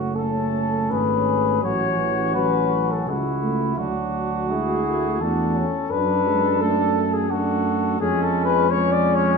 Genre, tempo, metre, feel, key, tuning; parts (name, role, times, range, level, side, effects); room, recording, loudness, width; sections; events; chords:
classical, hymn-like piece for brass band; 85 BPM; 3/4; rubato; F# minor; A4 = 440 Hz
warm flugelhorn; second line; 0.0-9.4 s; C#4 to A4; -26 LUFS; right 7 dB
bright trombone section; accompaniment; 0.0-9.4 s; G#3 to E4; -29 LUFS; left 1 dB
mellow euphonium; accompaniment; 0.0-9.4 s; E3 to A3; -27 LUFS; right 4 dB
dark tuba; bass; 0.0-9.4 s; F#1 to F#2; -26 LUFS; right 1 dB
dark cornet; melody; 0.1-9.4 s; F#4 to D5; -23 LUFS; left 8 dB
wet recital hall reverb, RT60 1.3 s; minimal, uncompressed stereo recording; -19 LUFS; side -4 dB against mid
0.0-9.4 A section
0.0 F#m; 1.6 F#m/A; 3.8 D; 5.9 D/F#; 8.0 C#/E#